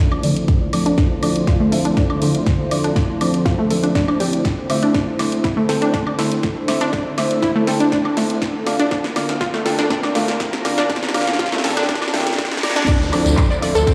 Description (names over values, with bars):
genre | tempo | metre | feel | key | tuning
progressive house | 121 BPM | 4/4 | straight | D minor | A4 = 440 Hz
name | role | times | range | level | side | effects
filtered supersaw swell | sustained chords | 0.0-13.9 s | D3 to C5 | -28 LUFS | equal | sidechain pumping, low-pass filter
unison pluck | arpeggios | 0.0-13.9 s | D3 to D5 | -24 LUFS | equal | sidechain pumping, tape echo
deep mellow chord stab | stabs | 0.0-13.9 s | D3 to Bb5 | -25 LUFS | equal | chorus, sidechain pumping, tape echo
riser, reverse cymbal and downlifter | sound effects | 4.4-13.9 s | none | -35 LUFS | equal | none
dark detuned saw bass | bass | 0.1-13.8 s | D1 to D2 | -31 LUFS | equal | none
house drum kit | drums | 0.1-13.9 s | crash cymbal, handclaps, hi-hat, snare drum, tambourine, woodblock | -26 LUFS | equal | studio reverb
electronic kick drum | drums | 0.5-13.9 s | none | -22 LUFS | equal | studio reverb
room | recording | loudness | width
moderate huge ambient reverb, RT60 4.4 s | played on a big sound system in a bare room, stone room reverb, high-pass filter | -18 LUFS | mono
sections
0.0-12.9 A section; 12.9-13.9 B section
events
build-up 0.0-12.9; drum fill 0.0-12.9; filter sweep on synth pluck 0.0-12.9; filter sweep on supersaw synth 0.0-12.9; filter sweep 0.0-12.9; drop 12.9-13.9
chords
0.0 Dm7; 4.9 Am/D; 8.9 Bb/D; 12.9 Dm7